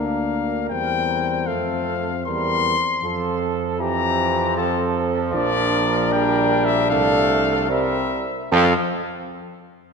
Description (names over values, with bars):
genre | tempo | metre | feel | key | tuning
classical, brass quintet | 77 BPM (dotted quarters) | 6/8 | straight | F major | A4 = 440 Hz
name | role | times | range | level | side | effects
mellow trumpet | melody | 0.0-8.7 s | D5 to C6 | -24 LUFS | left 7 dB | none
mellow flugelhorn | second line | 0.0-8.7 s | G4 to Bb4 | -26 LUFS | right 7 dB | none
clear trombone | accompaniment | 0.0-8.7 s | E3 to Bb3 | -27 LUFS | right 5 dB | none
warm French horn | accompaniment | 0.0-8.7 s | C4 to D4 | -25 LUFS | left 3 dB | none
clear bass trombone | bass | 0.0-8.7 s | Bb1 to F2 | -25 LUFS | right 2 dB | none
room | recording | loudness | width
wet concert hall reverb, RT60 2.3 s | none | -18 LUFS | side -5 dB against mid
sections
0.0-8.5 A section; 8.5-9.9 B section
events
none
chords
0.0 Bb/D; 0.7 C7/E; 1.5 F; 2.3 C7/E; 3.0 F; 3.8 C7/F; 4.6 F; 5.3 Bb; 6.1 Gm/Bb; 6.9 F/C; 7.7 C7; 8.5 F5